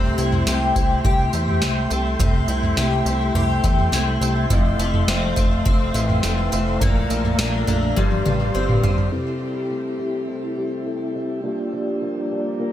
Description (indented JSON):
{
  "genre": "dream pop",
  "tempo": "104 BPM",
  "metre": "4/4",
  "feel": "straight",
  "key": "C major, C mixolydian from 9.1 s",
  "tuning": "A4 = 439 Hz",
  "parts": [
    { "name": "mellow tonewheel organ", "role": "sustained chords", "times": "0.0-12.7 s", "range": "A3 to C6", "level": "-25 LUFS", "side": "equal", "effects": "fast rotary speaker, low-pass filter" },
    { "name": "picked twelve-string acoustic guitar", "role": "arpeggios", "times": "0.0-12.7 s", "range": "F2 to G4", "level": "-24 LUFS", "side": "left 3 dB", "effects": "ensemble chorus, low-pass filter, digital delay" },
    { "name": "plucky analog bass", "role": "bass", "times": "0.0-9.1 s", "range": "F1 to E2", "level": "-23 LUFS", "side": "equal", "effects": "none" },
    { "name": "booming analog drum machine", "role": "drums", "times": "0.2-9.1 s", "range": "kick drum, snare drum, tambourine, toms", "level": "-21 LUFS", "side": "right 1 dB", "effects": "none" }
  ],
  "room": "light reverb",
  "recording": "none",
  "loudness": "-18 LUFS",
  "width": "side -12 dB against mid",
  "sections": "0.0-9.1 A section; 9.1-12.7 B section",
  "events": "drum fill 8.0-9.1; filter sweep 9.1-12.7",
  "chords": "0.0 C6; 4.5 Fmaj7; 6.8 Bbmaj7; 8.0 G7sus4; 9.1 C6; 11.4 Gm7",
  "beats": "0.47 1.05 1.62 | 2.20 2.78 3.36 3.93 | 4.51 5.09 5.66 6.24 | 6.82 7.39 7.97 8.55 | 9.12 9.70 10.28 10.86 | 11.43 12.01 12.59"
}